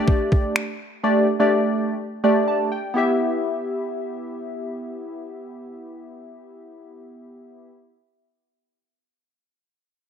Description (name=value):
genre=dance-pop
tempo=125 BPM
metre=4/4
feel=straight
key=E minor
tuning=A4 = 440 Hz
part: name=glassy digital keys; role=accompaniment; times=0.0-7.7 s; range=A3 to A5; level=-21 LUFS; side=equal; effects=chorus, sidechain pumping
part: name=detuned 8-bit digital drum machine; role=drums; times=0.1-0.7 s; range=finger snaps, kick drum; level=-20 LUFS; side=equal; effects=overdrive
room=light reverb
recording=none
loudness=-20 LUFS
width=side -8 dB against mid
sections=0.0-3.0 A section; 3.0-6.8 B section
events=synth keys fill 2.2-3.0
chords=0.0 Gsus2; 3.0 Em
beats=0.08 0.56 | 1.04 1.52 2.00 2.48 | 2.96 3.44 3.92 4.40 | 4.88 5.36 5.84 6.32